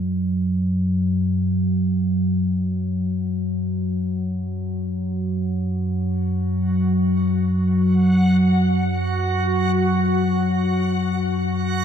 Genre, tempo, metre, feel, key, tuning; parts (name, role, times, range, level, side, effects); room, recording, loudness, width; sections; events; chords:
dark ambient drone; free time; A4 = 440 Hz
deep rumbling drone; drone; 0.0-11.8 s; F#2 to F#3; -19 LUFS; equal; built-in reverb, phaser
backwards swelling texture; texture; 6.8-11.8 s; F#4 to F#5; -26 LUFS; right 1 dB; built-in reverb
wet huge ambient reverb, RT60 7.8 s; -19 LUFS; side -8 dB against mid
0.0-11.8 A section